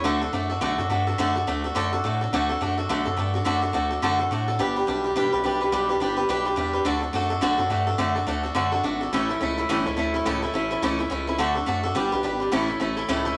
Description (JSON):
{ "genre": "rockabilly", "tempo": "212 BPM", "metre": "4/4", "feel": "swing 60% on 8ths", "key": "D major", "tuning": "A4 = 438 Hz", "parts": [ { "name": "picked swing-style acoustic guitar", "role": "accompaniment", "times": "0.0-13.4 s", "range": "A2 to B4", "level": "-25 LUFS", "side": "equal", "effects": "none" }, { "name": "gritty driven synth bass", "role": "bass", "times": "0.0-13.3 s", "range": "E1 to A2", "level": "-32 LUFS", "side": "equal", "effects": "none" } ], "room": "moderate large studio reverb, RT60 0.9 s", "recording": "none", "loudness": "-24 LUFS", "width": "mono", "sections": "0.0-13.4 A section", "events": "none", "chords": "0.0 D; 4.6 G; 6.9 D; 9.1 A; 11.4 D; 12.0 G; 12.5 A" }